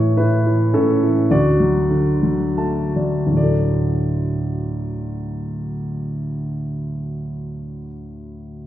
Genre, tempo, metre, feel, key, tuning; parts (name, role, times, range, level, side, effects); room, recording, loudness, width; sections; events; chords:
classical, lyrical solo piano; 73-109 BPM; 3/4; rubato; D major; A4 = 443 Hz
dark baby grand piano; solo; 0.0-8.7 s; D2 to A5; -18 LUFS; equal
wet recital hall reverb, RT60 1.6 s; recorded in a church or concert hall, nothing above 10.3 kHz; -17 LUFS; side -12 dB against mid
0.0-3.4 A section; 3.4-8.1 B section
slowing down 0.0-3.4; grand piano fill 2.2-3.4
0.0 A; 1.3 D